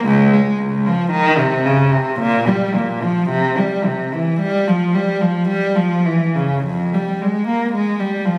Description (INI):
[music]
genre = classical, baroque-style suite movement for unaccompanied cello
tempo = 51-57 BPM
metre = 3/4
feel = rubato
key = F minor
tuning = A4 = 440 Hz
[part]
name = rich cello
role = solo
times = 0.0-8.4 s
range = Db2 to Bb3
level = -17 LUFS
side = equal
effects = none
[sound]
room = moderate scoring stage reverb, RT60 1.9 s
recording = recorded on a phone in the room, club ambience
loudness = -17 LUFS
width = mono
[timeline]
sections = 0.0-6.6 A section; 6.6-8.4 B section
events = none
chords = none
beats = | 0.05 1.12 2.19 | 3.29 4.39 5.49 | 6.64 7.73